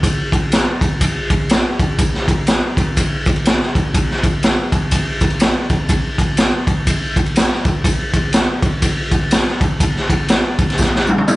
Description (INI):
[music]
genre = soul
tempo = 123 BPM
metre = 4/4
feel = swing 60% on 8ths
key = none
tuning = none
[part]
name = raw garage drum kit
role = drums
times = 0.0-11.4 s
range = kick drum, ride cymbal, snare drum, toms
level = -14 LUFS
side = equal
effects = none
[part]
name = tambourine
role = percussion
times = 0.0-11.4 s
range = none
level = -31 LUFS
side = left 2 dB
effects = none
[sound]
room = light reverb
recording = live gig heard through the venue's PA, club reverb, nothing above 10.5 kHz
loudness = -14 LUFS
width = side -19 dB against mid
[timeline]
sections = 0.0-11.4 A section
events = drum fill 10.8-11.4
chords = none